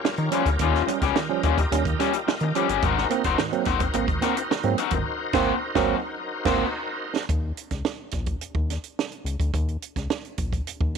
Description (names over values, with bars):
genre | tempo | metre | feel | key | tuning
funk | 108 BPM | 4/4 | straight | unclear | A4 = 440 Hz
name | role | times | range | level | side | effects
bright tonewheel organ | sustained chords | 0.0-7.3 s | Eb4 to Eb5 | -30 LUFS | left 1 dB | fast rotary speaker, overdrive, chorus vibrato
barky tine electric piano | stabs | 0.0-6.6 s | Ab2 to Db4 | -27 LUFS | right 13 dB | none
raw garage guitar | accompaniment | 0.1-6.7 s | G3 to C5 | -26 LUFS | left 16 dB | overdrive
compact cocktail drum kit | drums | 0.1-11.0 s | crash cymbal, hi-hat, kick drum, snare drum | -28 LUFS | right 3 dB | none
round analog bass | bass | 0.2-11.0 s | Gb1 to Eb3 | -27 LUFS | left 1 dB | none
room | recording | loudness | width
small room ambience | 1960s-style stereo with parts hard left and right | -22 LUFS | side -6 dB against mid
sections
0.0-7.3 A section; 7.3-11.0 B section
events
band accent 5.1-7.3; drum fill 6.7-7.3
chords
0.0 Eb9; 2.8 Ab9; 7.3 Eb7(no3)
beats
0.04 | 0.60 1.16 1.71 2.27 | 2.83 3.38 3.94 4.50 | 5.06 5.61 6.17 6.73 | 7.29 7.85 8.41 8.98 | 9.54 10.10 10.66